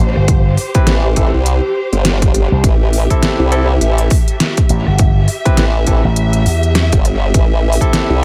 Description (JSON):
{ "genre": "glitch hop", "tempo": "102 BPM", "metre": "4/4", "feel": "swing 58% on 16ths", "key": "A minor", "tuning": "A4 = 440 Hz", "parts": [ { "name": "slap bass with an envelope filter", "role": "bass", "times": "0.0-6.9 s", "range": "G1 to E2", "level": "-15 LUFS", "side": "equal", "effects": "none" }, { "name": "dark symphonic string section", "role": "texture", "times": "0.0-8.2 s", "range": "G4 to E5", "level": "-24 LUFS", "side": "equal", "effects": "sidechain pumping" }, { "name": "dubstep drum kit", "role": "drums", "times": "0.2-8.1 s", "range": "hi-hat, rim click, snare drum", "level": "-22 LUFS", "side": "equal", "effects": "dub echo" }, { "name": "electronic kick drum", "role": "drums", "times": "0.3-7.9 s", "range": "none", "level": "-16 LUFS", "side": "equal", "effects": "none" }, { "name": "barky tine electric piano", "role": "stabs", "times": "0.8-8.2 s", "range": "C4 to B4", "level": "-24 LUFS", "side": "equal", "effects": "sidechain pumping, dub echo" }, { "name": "formant-sweep wobble bass", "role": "bass", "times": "0.9-8.2 s", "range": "G1 to C2", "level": "-16 LUFS", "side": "equal", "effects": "chorus" } ], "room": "little or no reverb", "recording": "echo-heavy mix", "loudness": "-13 LUFS", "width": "mono", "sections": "0.0-8.2 A section", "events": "none", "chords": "0.0 Am7", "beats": "| 0.28 0.87 1.46 2.05 | 2.64 3.22 3.81 4.40 | 4.99 5.58 6.17 6.75 | 7.34 7.93" }